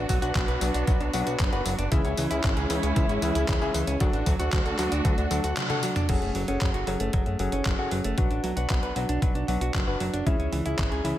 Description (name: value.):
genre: italo disco.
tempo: 115 BPM.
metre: 4/4.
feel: straight.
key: F# minor.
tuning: A4 = 440 Hz.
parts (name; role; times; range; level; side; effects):
dark chamber string section; sustained chords; 0.0-6.1 s; G#3 to F#4; -32 LUFS; right 1 dB; none.
direct-recorded clean electric guitar; arpeggios; 0.0-11.2 s; E3 to B4; -31 LUFS; right 3 dB; ping-pong delay.
warm electric grand piano; stabs; 0.0-11.2 s; C#4 to F#5; -31 LUFS; left 4 dB; low-pass filter, ping-pong delay.
chorused synth bass; bass; 0.0-11.1 s; F#1 to F#2; -30 LUFS; equal; none.
detuned 8-bit digital drum machine; drums; 0.1-11.2 s; crash cymbal, handclaps, hi-hat, tambourine, toms; -33 LUFS; equal; gated reverb.
electronic kick drum; drums; 0.1-10.9 s; none; -26 LUFS; equal; none.
room: light reverb.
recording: none.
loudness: -23 LUFS.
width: side -13 dB against mid.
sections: 0.0-6.1 A section; 6.1-11.2 B section.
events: drum fill 5.6-6.1; band accent 5.6; filter sweep on electric grand piano 6.1-11.2.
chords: 0.0 Bm; 1.9 C#m; 4.0 D; 6.1 F#madd9; 8.2 Bm; 10.3 C#m.